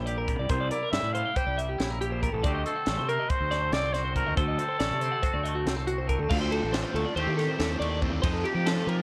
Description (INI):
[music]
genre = math rock and midwest emo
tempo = 279 BPM (eighths)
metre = 9/8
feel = straight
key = unclear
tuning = A4 = 440 Hz
[part]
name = twangy electric guitar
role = accompaniment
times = 0.0-9.0 s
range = C3 to C5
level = -38 LUFS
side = equal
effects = analog chorus
[part]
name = twelve-string electric guitar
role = arpeggios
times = 0.0-9.0 s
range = F#4 to G5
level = -35 LUFS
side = equal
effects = tremolo
[part]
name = fuzz fingered electric bass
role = bass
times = 0.0-9.0 s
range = A1 to F3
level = -33 LUFS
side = equal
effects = overdrive
[part]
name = crisp fusion drum kit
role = drums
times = 0.1-9.0 s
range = crash cymbal, hi-hat, kick drum, ride cymbal, snare drum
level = -34 LUFS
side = equal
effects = none
[part]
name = growling trumpet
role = melody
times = 0.5-5.8 s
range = G4 to G5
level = -33 LUFS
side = equal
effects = none
[part]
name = overdriven semi-hollow guitar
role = riff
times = 6.3-9.0 s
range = D3 to A4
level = -36 LUFS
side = equal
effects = none
[sound]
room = little or no reverb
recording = worn, warbling old tape, cassette tape, warbly pitch drift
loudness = -28 LUFS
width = mono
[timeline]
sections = 0.0-6.3 A section; 6.3-9.0 B section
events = none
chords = 0.0 C9; 2.4 D7b9; 6.3 Dm7; 7.2 Am7b5/Eb; 8.2 F9sus4